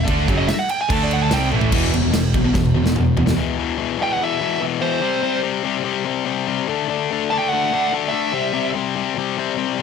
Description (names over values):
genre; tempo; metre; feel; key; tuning
heavy metal; 145 BPM; 4/4; straight; E minor; A4 = 441 Hz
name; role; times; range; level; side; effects
nasal lead guitar with a parked wah; melody; 0.0-1.5, 4.0-8.7 s; C5 to A5; -23 LUFS; right 2 dB; overdrive, tape echo
distorted electric guitar; riff; 0.0-3.4 s; E2 to D4; -22 LUFS; right 12 dB; distortion
heavy high-gain guitar; riff; 0.0-9.8 s; E2 to D4; -21 LUFS; left 11 dB; distortion
overdriven picked electric bass; bass; 0.0-3.3 s; E1 to D2; -22 LUFS; right 1 dB; none
big rock drum kit; drums; 0.1-3.4 s; crash cymbal, kick drum, snare drum, toms; -22 LUFS; right 1 dB; none
room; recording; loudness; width
small room ambience; none; -17 LUFS; side -6 dB against mid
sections
0.0-1.7 A section; 1.7-3.4 B section; 3.4-9.8 C section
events
lead electric guitar solo 0.0-1.7; drum fill 1.5, 2.6-3.4; half time 3.4-9.8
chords
0.0 N.C.; 0.9 D5; 1.3 Em; 1.7 E5; 5.0 C5; 6.7 D; 8.3 C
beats
| 0.08 0.49 0.91 1.32 | 1.73 2.14 2.56 2.97 | 3.38 3.80 4.21 4.62 | 5.04 5.45 5.86 6.27 | 6.69 7.10 7.51 7.92 | 8.34 8.75 9.16 9.57